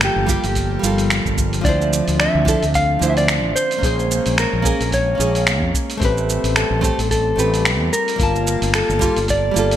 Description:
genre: sunset chillout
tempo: 110 BPM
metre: 4/4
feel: swing 56% on 16ths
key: unclear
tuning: A4 = 439 Hz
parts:
  - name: mellow electric guitar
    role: melody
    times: 0.0-9.8 s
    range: G4 to F5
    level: -21 LUFS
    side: left 1 dB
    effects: digital delay
  - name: nylon-string guitar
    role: accompaniment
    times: 0.0-9.8 s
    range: F3 to A5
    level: -23 LUFS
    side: right 1 dB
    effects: auto-pan, digital delay
  - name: airy breathy pad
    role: sustained chords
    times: 0.0-9.8 s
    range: D3 to A5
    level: -26 LUFS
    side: right 2 dB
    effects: chorus
  - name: fretless electric bass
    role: bass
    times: 0.0-9.8 s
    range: G1 to F2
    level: -21 LUFS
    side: equal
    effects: tube saturation
  - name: dusty soul sampler-style drum kit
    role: drums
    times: 0.0-9.8 s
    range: cabasa, finger snaps, hi-hat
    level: -22 LUFS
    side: right 1 dB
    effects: studio ambience, gated reverb
  - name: electronic kick drum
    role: drums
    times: 0.3-9.4 s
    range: none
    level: -23 LUFS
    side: equal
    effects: studio ambience
room: light reverb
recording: bright 1980s-style digital production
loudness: -15 LUFS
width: side -11 dB against mid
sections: 0.0-9.8 A section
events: none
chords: 0.0 Gm9; 1.6 Dm9; 3.6 Bbm9; 6.0 Am9; 7.9 Gm9

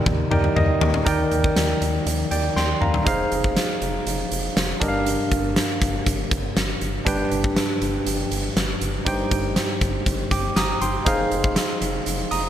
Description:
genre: 1980s-style pop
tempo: 120 BPM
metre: 4/4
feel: straight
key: F dorian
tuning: A4 = 440 Hz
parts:
  - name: barky tine electric piano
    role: accompaniment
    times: 0.0-12.5 s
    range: G2 to Eb6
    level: -23 LUFS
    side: right 1 dB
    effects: medium stereo tremolo
  - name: rubbery square bass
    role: bass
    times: 0.1-12.5 s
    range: F1 to Eb2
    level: -28 LUFS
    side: equal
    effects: none
  - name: huge arena drum kit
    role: drums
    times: 0.1-12.4 s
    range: hi-hat, kick drum, snare drum, toms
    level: -23 LUFS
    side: left 1 dB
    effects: none
room: moderate lush hall reverb, RT60 1.8 s, studio reverb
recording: bright 1980s-style digital production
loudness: -20 LUFS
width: side -11 dB against mid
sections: 0.0-1.1 A section; 1.1-3.1 B section; 3.1-12.5 C section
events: drum fill 0.0-1.1, 2.6-3.1; tine electric piano fill 0.3-1.1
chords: 0.0 Ebmaj7; 3.1 Fm7; 4.8 Gm7; 7.1 G; 9.1 Cm/G; 11.1 Fm7

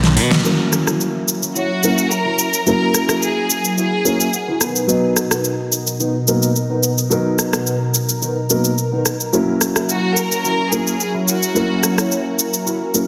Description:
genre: nu-disco, nu disco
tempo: 108 BPM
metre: 4/4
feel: straight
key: F# mixolydian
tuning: A4 = 440 Hz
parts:
  - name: pop drum kit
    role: drums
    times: 0.0-13.1 s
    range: hi-hat, rim click, shaker, snare drum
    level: -22 LUFS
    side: equal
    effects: soft clipping on snare
  - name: dark baby grand piano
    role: accompaniment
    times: 0.4-13.1 s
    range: F#3 to A#4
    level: -23 LUFS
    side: equal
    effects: none
  - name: lush unison pad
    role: sustained chords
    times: 1.1-13.1 s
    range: B2 to A#4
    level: -26 LUFS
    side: equal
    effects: chorus, phaser
  - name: semi-hollow electric guitar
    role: riff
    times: 0.4-13.0 s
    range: B3 to B5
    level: -28 LUFS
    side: equal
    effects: analog chorus, low-pass filter
  - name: clear chamber violin section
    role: melody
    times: 1.6-4.6, 9.9-12.1 s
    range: F#4 to A#4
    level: -24 LUFS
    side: equal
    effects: tape echo
room: wet echo chamber reverb, RT60 2.4 s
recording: dense, heavily limited modern master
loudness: -18 LUFS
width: mono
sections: 0.4-13.1 A section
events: drum fill 0.0-0.4; band accent 0.3; filter sweep on analog synth pad 0.4-13.1; clean electric guitar fill 3.8-4.9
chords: 0.4 F#7; 4.6 Bmaj7; 9.3 F#7

